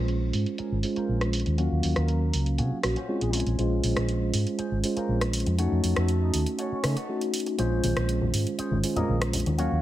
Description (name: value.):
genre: filtered disco house.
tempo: 120 BPM.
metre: 4/4.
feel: straight.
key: Bb minor.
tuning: A4 = 440 Hz.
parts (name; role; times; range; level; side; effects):
tine electric piano; accompaniment; 0.0-9.8 s; Gb3 to F5; -28 LUFS; equal; medium tremolo, phaser, low-pass filter.
electric guitar with an envelope filter; riff; 0.0-9.8 s; Db4 to Eb5; -39 LUFS; left 3 dB; vintage 12-bit sampler grit, low-pass filter.
hollow-body short-scale fingered electric bass; bass; 0.0-9.8 s; Ab1 to Db3; -26 LUFS; equal; tube saturation, low-pass filter.
punchy analog drum machine; drums; 0.1-9.7 s; hi-hat, rim click; -32 LUFS; equal; overdrive, low-pass filter on snare, low-pass filter on hats, low-pass filter on cymbals.
brilliant horn section; melody; 1.0-9.2 s; Ab3 to Eb5; -39 LUFS; equal; low-pass filter.
tambourine and congas; percussion; 7.6-9.8 s; none; -32 LUFS; left 2 dB; low-pass filter on perc.
room: light reverb, digital ambience.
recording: none.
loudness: -24 LUFS.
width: side -13 dB against mid.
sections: 0.0-9.8 A section.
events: filter sweep 0.0-9.8.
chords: 0.0 Bbm9; 1.6 Ebm9; 3.3 Bbm9; 5.6 F7b9b13; 7.6 Bbm9.